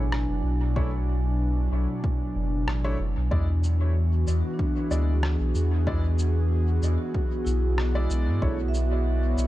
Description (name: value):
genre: ambient dub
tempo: 94 BPM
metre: 4/4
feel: swing 54% on 16ths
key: B dorian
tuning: A4 = 440 Hz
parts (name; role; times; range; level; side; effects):
- airy breathy pad; sustained chords; 0.0-9.5 s; B2 to D5; -30 LUFS; equal; chorus
- vibraphone with soft mallets; arpeggios; 0.0-9.5 s; D4 to G#5; -36 LUFS; right 3 dB; low-pass filter, dub echo
- warm sub bass; bass; 0.0-9.5 s; F#1 to G#2; -24 LUFS; equal; none
- electronic rim click and cabasa; drums; 0.1-9.5 s; none; -36 LUFS; equal; dub echo
- clear upright piano; stabs; 0.8-8.6 s; G#3 to D5; -37 LUFS; left 1 dB; dub echo
- electronic kick drum; drums; 0.8-8.6 s; none; -28 LUFS; equal; none
room: little or no reverb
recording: dark, warm production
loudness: -23 LUFS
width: side -15 dB against mid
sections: 0.0-9.5 A section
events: filter sweep on vibraphone 0.0-9.5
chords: 0.0 Bm11; 3.3 E7; 8.4 Bm11